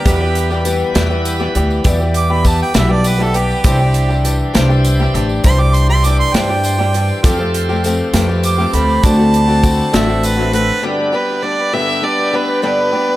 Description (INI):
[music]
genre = folk rock and heartland rock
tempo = 67 BPM (dotted quarters)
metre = 6/8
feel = straight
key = unclear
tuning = A4 = 440 Hz
[part]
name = clear harmonica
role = second line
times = 0.0-10.8 s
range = G4 to D6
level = -20 LUFS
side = right 3 dB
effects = analog delay
[part]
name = picked old ladder-braced acoustic guitar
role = accompaniment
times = 0.0-13.2 s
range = E2 to G4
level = -20 LUFS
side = left 2 dB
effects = analog delay
[part]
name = warm concert grand piano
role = accompaniment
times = 0.0-10.8 s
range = D4 to D5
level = -24 LUFS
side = equal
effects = analog delay
[part]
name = bright tonewheel organ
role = sustained chords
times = 0.0-13.2 s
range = B3 to C5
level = -26 LUFS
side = equal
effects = slow rotary speaker, overdrive
[part]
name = upright bass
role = bass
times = 0.1-10.7 s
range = A1 to G2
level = -15 LUFS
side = equal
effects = none
[part]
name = natural country drum kit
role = drums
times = 0.1-10.7 s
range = hi-hat, kick drum, snare drum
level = -17 LUFS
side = equal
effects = analog delay
[part]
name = tambourine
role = percussion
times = 0.1-10.8 s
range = none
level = -32 LUFS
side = left 4 dB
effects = analog delay
[part]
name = rich fiddle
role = melody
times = 11.1-13.2 s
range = B4 to E5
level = -16 LUFS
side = right 2 dB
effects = analog delay
[sound]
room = light reverb, studio reverb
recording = echo-heavy mix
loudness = -12 LUFS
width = side -15 dB against mid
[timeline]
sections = 0.0-10.8 A section; 10.8-13.2 B section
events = harmonica solo 0.0-10.8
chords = 0.1 Em; 3.7 Cadd9; 7.2 Fadd9; 9.0 D7; 10.8 G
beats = | 0.06 0.96 | 1.86 2.75 | 3.65 4.55 | 5.45 6.35 | 7.24 8.14 | 9.04 9.94 | 10.83 11.73 | 12.63